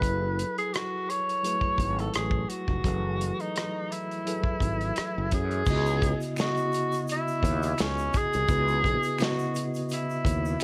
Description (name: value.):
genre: R&B, neo-soul.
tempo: 85 BPM.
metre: 4/4.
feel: swing 56% on 16ths.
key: C# minor.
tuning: A4 = 440 Hz.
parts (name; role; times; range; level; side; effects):
breathy tenor saxophone; melody; 0.0-10.6 s; C#4 to C#5; -32 LUFS; equal; none.
mellow tine electric piano; accompaniment; 0.0-10.6 s; C#3 to D#5; -34 LUFS; equal; none.
fretless electric bass; bass; 0.0-10.6 s; E#1 to F#2; -32 LUFS; equal; none.
warm soul drum kit; drums; 0.0-10.6 s; crash cymbal, hi-hat, kick drum, rim click, snare drum; -32 LUFS; equal; none.
egg shaker and finger snaps; percussion; 5.7-10.6 s; none; -48 LUFS; equal; none.
room: little or no reverb.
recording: none.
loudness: -28 LUFS.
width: mono.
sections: 0.0-5.7 A section; 5.7-10.6 B section.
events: none.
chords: 0.0 F#m11; 5.7 C#m11.